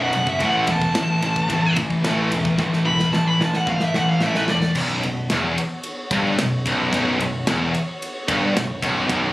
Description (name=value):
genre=heavy metal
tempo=111 BPM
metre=4/4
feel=straight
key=unclear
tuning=A4 = 440 Hz
part: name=high-gain lead guitar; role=melody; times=0.0-4.8 s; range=B4 to B5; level=-23 LUFS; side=equal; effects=distortion, ping-pong delay
part: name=clear studio string section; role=sustained chords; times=0.0-9.3 s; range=A3 to C#5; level=-34 LUFS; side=equal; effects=none
part: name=distorted electric guitar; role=riff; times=0.0-9.3 s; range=B1 to A3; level=-27 LUFS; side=right 4 dB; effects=overdrive
part: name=heavy high-gain guitar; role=riff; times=0.0-9.3 s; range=B1 to A3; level=-28 LUFS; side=right 1 dB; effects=distortion
part: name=tight distorted guitar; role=riff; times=0.0-9.3 s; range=B1 to A3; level=-22 LUFS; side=left 3 dB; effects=distortion
part: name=growling picked electric bass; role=bass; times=0.0-9.3 s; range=B0 to A1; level=-28 LUFS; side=equal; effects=overdrive
part: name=modern studio drum kit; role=drums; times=0.1-9.2 s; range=crash cymbal, kick drum, ride cymbal, snare drum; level=-27 LUFS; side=equal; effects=none
room=little or no reverb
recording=recorded on a phone in the room, club ambience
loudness=-18 LUFS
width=side -18 dB against mid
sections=0.0-4.8 A section; 4.8-9.3 B section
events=lead electric guitar solo 0.0-4.8; drum fill 2.6-4.8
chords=0.4 A5; 4.8 B5